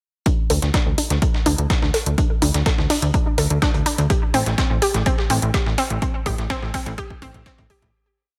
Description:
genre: progressive house.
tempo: 125 BPM.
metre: 4/4.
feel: straight.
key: unclear.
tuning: A4 = 442 Hz.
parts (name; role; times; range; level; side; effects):
analog pluck; arpeggios; 0.3-7.7 s; C4 to A4; -27 LUFS; equal; chorus, sidechain pumping, digital delay.
breakbeat sampler-style drum kit; drums; 0.3-7.9 s; hi-hat, snare drum; -33 LUFS; equal; high-pass filter on hats, high-pass filter on snare.
electronic hi-hat; drums; 0.3-7.9 s; none; -29 LUFS; equal; overdrive.
electronic kick drum; drums; 0.3-7.9 s; none; -24 LUFS; equal; none.
plucky analog bass; bass; 0.5-7.9 s; A1 to D2; -24 LUFS; equal; sidechain pumping.
room: light reverb, digital ambience.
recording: none.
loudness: -20 LUFS.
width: mono.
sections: 0.3-7.9 build.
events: build-up 0.3-7.9; filter sweep on synth arpeggio sound 0.3-7.9; drum fill 4.1-7.9; fade-out 5.4-7.9.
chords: 0.3 D5; 4.1 Am.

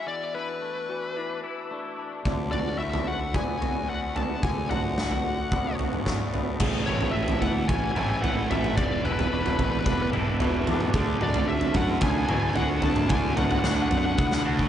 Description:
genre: post-rock.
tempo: 111 BPM.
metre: 4/4.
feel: straight.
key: D lydian.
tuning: A4 = 440 Hz.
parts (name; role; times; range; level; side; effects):
smooth overdriven lead guitar; melody; 0.0-14.4 s; B4 to A5; -31 LUFS; left 3 dB; slapback echo, digital delay.
Celtic harp; arpeggios; 0.0-14.7 s; C#4 to G#4; -38 LUFS; left 1 dB; none.
twangy electric guitar; arpeggios; 0.0-14.7 s; E2 to F#4; -36 LUFS; left 5 dB; ensemble chorus, slapback echo, digital delay.
fuzz fingered electric bass; bass; 2.3-14.7 s; E1 to F#2; -31 LUFS; equal; overdrive.
huge arena drum kit; drums; 2.3-14.7 s; crash cymbal, kick drum, snare drum, toms; -26 LUFS; right 1 dB; none.
distorted electric guitar; riff; 6.6-14.7 s; E2 to D4; -29 LUFS; right 4 dB; distortion, slapback echo.
room: moderate lush hall reverb, RT60 2.7 s.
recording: big arena sound, nothing above 10.3 kHz.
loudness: -23 LUFS.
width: side -10 dB against mid.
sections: 0.0-6.6 A section; 6.6-14.7 B section.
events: drum fill 14.2-14.7.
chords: 0.1 E7sus4; 2.3 D6; 6.6 Amaj7; 8.8 E7sus4; 10.9 D6.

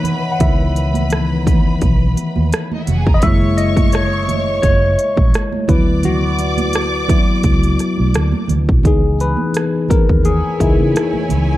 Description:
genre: lush 1970s-style soul.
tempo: 85 BPM.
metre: 4/4.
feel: swing 54% on 16ths.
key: C# dorian.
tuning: A4 = 441 Hz.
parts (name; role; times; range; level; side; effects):
clear studio string section; second line; 0.0-11.6 s; D#4 to D6; -25 LUFS; right 1 dB; none.
tine electric piano; accompaniment; 0.0-11.6 s; D#3 to F#5; -18 LUFS; left 2 dB; phaser.
techno drum kit; drums; 0.0-11.5 s; hi-hat, kick drum, rim click; -16 LUFS; equal; none.
congas; percussion; 0.0-11.5 s; none; -25 LUFS; right 7 dB; none.
vintage muted fingered electric bass; bass; 0.4-11.6 s; E#1 to C#3; -18 LUFS; equal; none.
room: little or no reverb.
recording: dark, warm production.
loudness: -13 LUFS.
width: side -15 dB against mid.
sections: 0.0-8.9 A section; 8.9-11.6 B section.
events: tine electric piano solo 0.0-8.9, 8.9-11.6.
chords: 0.0 C#m7; 3.2 F#7; 5.7 D6; 8.9 C#m7.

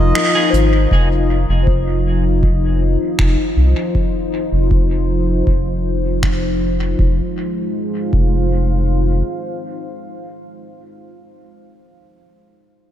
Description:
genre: ambient dub.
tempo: 79 BPM.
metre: 4/4.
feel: straight.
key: F minor.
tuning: A4 = 440 Hz.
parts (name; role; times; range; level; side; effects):
melodica; melody; 0.0-0.5 s; Eb5; -25 LUFS; right 1 dB; dub echo.
deep dark ambient pad; sustained chords; 0.0-10.6 s; F3 to F5; -20 LUFS; left 2 dB; chorus, built-in reverb.
round analog bass; bass; 0.0-9.2 s; F1 to C2; -16 LUFS; equal; none.
vintage brush drum kit; drums; 0.2-6.4 s; finger snaps, hi-hat; -24 LUFS; right 1 dB; dub echo.
clean electric guitar; stabs; 0.4-0.5 s; C4 to Ab4; -26 LUFS; right 2 dB; lush chorus, dub echo.
soft synth bell; arpeggios; 0.5-2.7 s; C5; -28 LUFS; left 9 dB; chorus, phaser, diffuse ambient delay.
electronic kick drum; drums; 0.9-8.4 s; none; -19 LUFS; equal; overdrive.
room: light reverb, small room ambience.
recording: none.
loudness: -14 LUFS.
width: side -11 dB against mid.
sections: 0.9-7.0 A section; 7.0-10.0 B section.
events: break 0.0-0.9; band accent 0.2-0.5.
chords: 0.0 Bb7sus4; 0.9 F5; 7.0 Fm7.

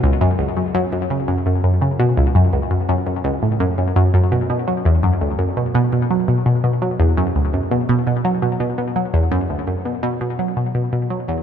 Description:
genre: ambient.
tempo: 84 BPM.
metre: 4/4.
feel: straight.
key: B minor.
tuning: A4 = 438 Hz.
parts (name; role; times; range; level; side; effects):
analog pluck; solo; 0.0-11.4 s; C#2 to F#3; -16 LUFS; equal; chorus, phaser, ping-pong delay.
room: moderate huge ambient reverb, RT60 8.6 s.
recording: none.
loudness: -16 LUFS.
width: side -8 dB against mid.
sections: 0.0-11.4 A section.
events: fade-out 8.1-11.4.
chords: none.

